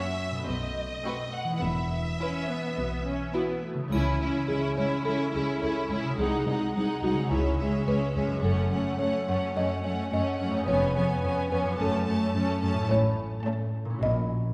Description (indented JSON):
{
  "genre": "cinematic, playful, whimsical film cue",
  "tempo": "107 BPM",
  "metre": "4/4",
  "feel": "straight",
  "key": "E major, C# minor from 3.9 s",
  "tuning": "A4 = 441 Hz",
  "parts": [
    { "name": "clear studio violin section", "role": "melody", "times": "0.0-13.9 s", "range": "D#5 to A5", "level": "-39 LUFS", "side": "equal", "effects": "none" },
    { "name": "concert harp", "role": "arpeggios", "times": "0.0-14.5 s", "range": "E#2 to D#5", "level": "-36 LUFS", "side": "equal", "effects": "none" },
    { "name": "warm studio cello section", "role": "bass", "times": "0.5-14.5 s", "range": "B#1 to B2", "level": "-35 LUFS", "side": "equal", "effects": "none" },
    { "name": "warm studio double bass section", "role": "bass", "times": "0.5-14.5 s", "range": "E1 to C#2", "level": "-36 LUFS", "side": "equal", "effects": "none" },
    { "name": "rich studio viola section", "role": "accompaniment", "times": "1.0-13.9 s", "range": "G#3 to C#4", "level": "-36 LUFS", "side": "equal", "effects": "none" },
    { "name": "rich studio violin section", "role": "second line", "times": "1.1-13.9 s", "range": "C#4 to B4", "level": "-35 LUFS", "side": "equal", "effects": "none" },
    { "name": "buzzing marimba with medium mallets", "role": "melody", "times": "3.3-14.5 s", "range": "E4 to F#5", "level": "-35 LUFS", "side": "equal", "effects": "none" },
    { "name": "triangle", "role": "percussion", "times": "3.9-5.0 s", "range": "none", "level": "-52 LUFS", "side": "equal", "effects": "none" }
  ],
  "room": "wet scoring stage reverb, RT60 2.0 s",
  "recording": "heard from further back in the room",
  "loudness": "-28 LUFS",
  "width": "mono",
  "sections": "0.0-3.9 A section; 3.9-14.5 B section",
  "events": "none",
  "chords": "0.5 B7b9; 1.6 E; 3.9 C#m; 6.2 G#7/B#; 7.3 C#m; 8.4 F#m; 10.7 C#7/E#; 11.8 F#m; 12.9 A; 14.0 F#7/A#"
}